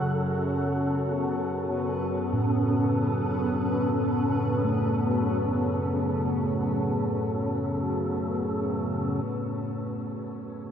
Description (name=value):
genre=dark ambient drone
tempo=free time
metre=none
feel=none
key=F# minor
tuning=A4 = 441 Hz
part: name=granular cloud pad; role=sustained chords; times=0.0-9.3 s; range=B3 to F#5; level=-30 LUFS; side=left 2 dB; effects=built-in reverb, shimmer reverb
part: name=bronze singing bowl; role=arpeggios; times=0.0-10.7 s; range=A2 to A3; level=-30 LUFS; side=right 1 dB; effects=tape echo
part: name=analog drone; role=drone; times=0.0-10.7 s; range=F#2 to C#3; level=-29 LUFS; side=left 1 dB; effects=chorus
part: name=wind-like tuned noise texture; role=texture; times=0.0-10.7 s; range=A4 to C#5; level=-34 LUFS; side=right 1 dB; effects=built-in reverb, shimmer reverb
room=wet huge ambient reverb, RT60 8.7 s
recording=dark, warm production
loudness=-25 LUFS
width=side -8 dB against mid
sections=0.0-9.3 A section; 9.3-10.7 B section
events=none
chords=0.0 F#m